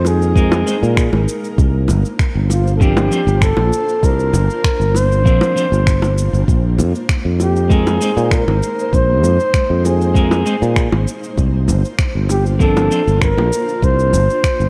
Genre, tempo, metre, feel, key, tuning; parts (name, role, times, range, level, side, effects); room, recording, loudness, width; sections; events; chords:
sunset chillout; 98 BPM; 4/4; straight; A4 = 442 Hz
breathy flugelhorn; melody; 0.0-14.7 s; F4 to C5; -21 LUFS; equal; digital delay
ethereal airy pad; sustained chords; 0.0-14.7 s; Ab3 to C5; -28 LUFS; equal; ensemble chorus, built-in reverb, tremolo
sustaining fretless electric bass; bass; 0.0-14.7 s; G1 to Bb2; -18 LUFS; equal
bongos; percussion; 0.0-14.3 s; -23 LUFS; equal
electronic cabasa and finger snaps; drums; 0.1-14.7 s; -28 LUFS; equal
clean electric guitar; accompaniment; 0.4-13.0 s; F3 to C5; -24 LUFS; equal
electronic kick drum; drums; 0.4-14.6 s; -18 LUFS; equal
light reverb, digital ambience; worn, warbling old tape, cassette tape, warbly pitch drift; -15 LUFS; mono
0.0-14.7 A section
0.0 Bb9sus4; 1.6 C9sus4; 6.5 Bb9sus4; 11.4 C9sus4